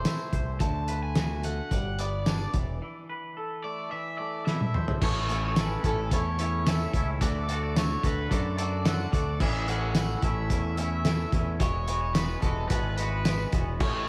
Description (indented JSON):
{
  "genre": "indie rock",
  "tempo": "109 BPM",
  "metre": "4/4",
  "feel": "straight",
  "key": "unclear",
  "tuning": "A4 = 437 Hz",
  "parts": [
    { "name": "overdriven electric guitar", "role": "melody", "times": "0.0-14.1 s", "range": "A4 to A5", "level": "-37 LUFS", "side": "equal", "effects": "none" },
    { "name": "twangy electric guitar", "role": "riff", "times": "0.0-14.1 s", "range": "A2 to C5", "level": "-36 LUFS", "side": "equal", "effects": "lush chorus, slapback echo" },
    { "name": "growling fingered electric bass", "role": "bass", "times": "0.0-14.1 s", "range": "E1 to F#2", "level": "-33 LUFS", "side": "equal", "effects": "overdrive" },
    { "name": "cloth-damped thuddy drum kit", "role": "drums", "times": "0.1-13.9 s", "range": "crash cymbal, hi-hat, kick drum, snare drum, tambourine, toms", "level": "-31 LUFS", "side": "equal", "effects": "none" }
  ],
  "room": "moderate lush hall reverb, RT60 2.1 s",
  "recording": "big arena sound",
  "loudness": "-28 LUFS",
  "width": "mono",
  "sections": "0.0-5.0 A section; 5.0-14.1 B section",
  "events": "break 2.8-5.0; drum fill 4.5-5.0",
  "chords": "0.0 Am/E; 0.6 D6; 1.7 G; 2.5 Esus4; 3.9 Am/E; 5.0 A; 7.2 D; 9.4 A; 11.6 Eadd9"
}